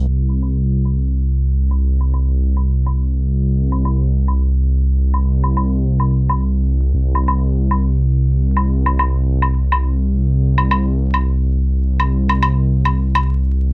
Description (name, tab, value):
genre	deep dubstep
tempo	140 BPM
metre	4/4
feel	swing 61% on 16ths, half-time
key	unclear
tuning	A4 = 444 Hz
part	dark detuned saw bass	bass	0.0-13.7 s	C2	-14 LUFS	equal	none
part	woodblock	drums	0.3-13.3 s	none	-19 LUFS	left 1 dB	cassette tape
room	little or no reverb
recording	home recording on cassette, vinyl crackle, low-pass filter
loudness	-14 LUFS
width	side -31 dB against mid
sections	0.1-13.7 A section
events	filter sweep 0.1-13.7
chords	none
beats	| 0.08 0.51 0.94 1.37 | 1.79 2.22 2.65 3.08 | 3.51 3.94 4.37 4.79 | 5.22 5.65 6.08 6.51 | 6.94 7.37 7.79 8.22 | 8.65 9.08 9.51 9.94 | 10.37 10.79 11.22 11.65 | 12.08 12.51 12.94 13.37